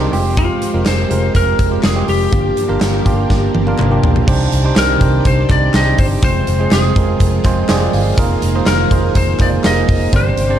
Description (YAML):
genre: 1980s-style pop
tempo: 123 BPM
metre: 4/4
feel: straight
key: C minor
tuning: A4 = 442 Hz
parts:
  - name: bell-like tine electric piano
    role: accompaniment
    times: 0.0-10.6 s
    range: G2 to C6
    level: -18 LUFS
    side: right 4 dB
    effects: none
  - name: string machine, full ensemble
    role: sustained chords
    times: 0.0-10.6 s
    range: C3 to D5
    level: -24 LUFS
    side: left 1 dB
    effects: ensemble chorus
  - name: vintage muted fingered electric bass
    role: bass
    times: 0.0-10.5 s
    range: F1 to C2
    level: -17 LUFS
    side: equal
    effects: none
  - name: big rock drum kit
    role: drums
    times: 0.1-10.5 s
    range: crash cymbal, hi-hat, kick drum, snare drum, tambourine, toms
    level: -16 LUFS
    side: equal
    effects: none
  - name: lightly driven lead guitar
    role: melody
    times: 0.4-10.6 s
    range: F4 to Eb5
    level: -19 LUFS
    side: left 2 dB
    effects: none
  - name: group handclap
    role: percussion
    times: 0.9-9.8 s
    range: none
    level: -35 LUFS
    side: left 9 dB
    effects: none
room: light reverb, small room ambience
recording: dark, warm production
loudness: -12 LUFS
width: side -10 dB against mid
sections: 0.0-4.3 A section; 4.3-10.6 B section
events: tine electric piano fill 0.0-0.4, 7.4-8.2; drum fill 3.3-4.3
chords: 0.1 Fmadd9; 2.3 Gm7; 4.3 Cmadd9; 6.2 Fm; 8.2 Bb7sus4/F